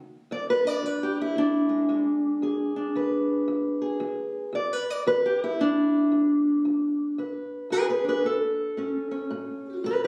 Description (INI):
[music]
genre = acoustic country blues, solo or duo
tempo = 113 BPM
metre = 4/4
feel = swing 62% on 8ths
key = E mixolydian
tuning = A4 = 437 Hz
[part]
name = fingerpicked steel-string acoustic guitar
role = solo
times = 0.0-10.1 s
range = E2 to D5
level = -26 LUFS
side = equal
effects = none
[sound]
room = wet small room reverb, RT60 0.5 s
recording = recorded on a phone in the room, club reverb, compression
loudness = -26 LUFS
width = mono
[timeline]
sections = 0.0-10.1 A section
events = none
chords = 0.0 E7; 8.2 A